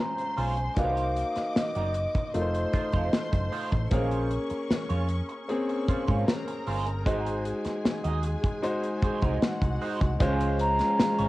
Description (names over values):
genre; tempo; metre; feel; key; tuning
lush 1970s-style soul; 76 BPM; 4/4; straight; Db major; A4 = 439 Hz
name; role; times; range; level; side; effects
vibraphone with soft mallets; melody; 0.0-3.5, 10.6-11.3 s; Eb5 to Bb5; -30 LUFS; equal; cassette tape, tape echo
rich symphonic string section; second line; 0.0-11.3 s; Db4 to D6; -38 LUFS; left 1 dB; cassette tape
clear concert grand piano; accompaniment; 0.0-11.3 s; Ab3 to C5; -32 LUFS; left 2 dB; cassette tape
electric guitar through a small old amp; riff; 0.2-11.3 s; Ab3 to Eb5; -35 LUFS; right 5 dB; wah, cassette tape
modern studio drum kit; drums; 0.2-11.3 s; hi-hat, kick drum, snare drum; -28 LUFS; equal; none
hollow-body short-scale fingered electric bass; bass; 0.4-11.3 s; F1 to Ab2; -30 LUFS; equal; tube saturation
dark French horn section; sustained chords; 10.2-11.3 s; Db3 to Ab3; -32 LUFS; equal; cassette tape
room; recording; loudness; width
little or no reverb; home recording on cassette; -25 LUFS; side -18 dB against mid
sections
0.0-10.2 A section; 10.2-11.3 B section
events
none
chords
0.0 Dbmaj7; 0.8 Cm7b5; 2.3 F7; 3.9 Bbm9; 7.1 Ab7; 10.2 Dbmaj7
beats
| 0.77 1.55 2.34 3.13 | 3.91 4.70 5.49 6.28 | 7.06 7.85 8.63 9.42 | 10.20 10.99